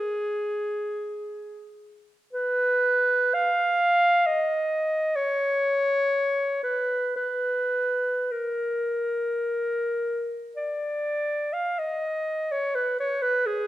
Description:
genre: classical, free, expressive piece for unaccompanied clarinet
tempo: 43-69 BPM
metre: 4/4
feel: rubato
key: unclear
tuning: A4 = 441 Hz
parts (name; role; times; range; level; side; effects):
- warm clarinet; solo; 0.0-13.7 s; Ab4 to F5; -23 LUFS; equal; none
room: wet recital hall reverb, RT60 1.8 s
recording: none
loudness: -23 LUFS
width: side -14 dB against mid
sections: 0.0-11.8 A section; 11.8-13.7 B section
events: none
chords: none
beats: 0.58 1.46 2.34 | 3.35 4.28 5.16 6.11 | 7.17 8.30 9.43 10.57 | 11.79 12.76

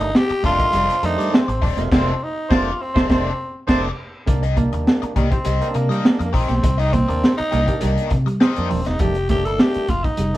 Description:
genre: funk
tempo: 102 BPM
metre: 4/4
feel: straight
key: C dorian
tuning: A4 = 440 Hz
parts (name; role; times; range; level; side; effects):
- growling tenor saxophone; melody; 0.0-10.4 s; G3 to A4; -23 LUFS; equal; none
- biting overdriven guitar; accompaniment; 0.0-8.9 s; Eb4 to Eb5; -28 LUFS; left 5 dB; wah
- percussive tonewheel organ; stabs; 0.0-10.4 s; Eb3 to F4; -28 LUFS; right 3 dB; overdrive
- vintage muted fingered electric bass; bass; 0.0-10.3 s; Eb1 to C3; -23 LUFS; equal; none
- crunchy breakbeat drum kit; drums; 0.0-10.4 s; crash cymbal, hi-hat, kick drum, snare drum; -19 LUFS; equal; none
- mellow electric guitar; riff; 0.4-10.3 s; F3 to C4; -26 LUFS; right 2 dB; none
- brilliant trombone; second line; 0.7-3.8 s; C5; -28 LUFS; right 4 dB; none
room: moderate small room reverb, RT60 0.6 s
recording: band playing live in one room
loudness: -16 LUFS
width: side -15 dB against mid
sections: 0.0-4.3 A section; 4.3-10.4 B section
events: band accent 1.9-4.3; tenor saxophone solo 4.3-10.4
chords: 0.0 F13; 4.3 Cm7; 9.0 F13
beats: 0.14 0.73 1.32 | 1.92 2.50 3.10 3.69 | 4.28 4.87 5.46 6.05 | 6.64 7.23 7.82 8.41 | 9.01 9.60 10.19

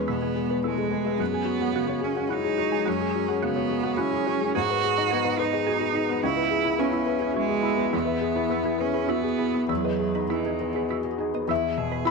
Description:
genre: neoclassical piano and strings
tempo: 98-110 BPM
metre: 3/4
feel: rubato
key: E major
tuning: A4 = 440 Hz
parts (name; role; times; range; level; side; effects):
- rich cello; second line; 0.0-12.1 s; E3 to G#4; -27 LUFS; right 13 dB; none
- felt-muted upright piano; accompaniment; 0.0-12.1 s; C#2 to B5; -27 LUFS; left 11 dB; none
- warbly tape-like pad; sustained chords; 0.0-12.1 s; G#3 to E5; -32 LUFS; equal; chorus, built-in reverb
- glassy wavetable pluck; arpeggios; 0.0-12.1 s; C#4 to G#5; -33 LUFS; right 14 dB; chorus, tape echo
room: light reverb, small room ambience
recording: 1960s-style stereo with parts hard left and right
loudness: -23 LUFS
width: side -3 dB against mid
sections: 0.0-11.5 A section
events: none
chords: 0.0 E; 1.2 F#sus2; 4.6 G#m7; 6.2 C#m7; 7.9 E; 9.7 Emaj7; 11.5 E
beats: 0.08 0.64 | 1.20 1.76 2.30 | 2.87 3.42 3.97 | 4.55 5.12 5.67 | 6.23 6.79 7.36 | 7.93 8.51 9.09 | 9.70 10.30 10.91 | 11.50 12.06

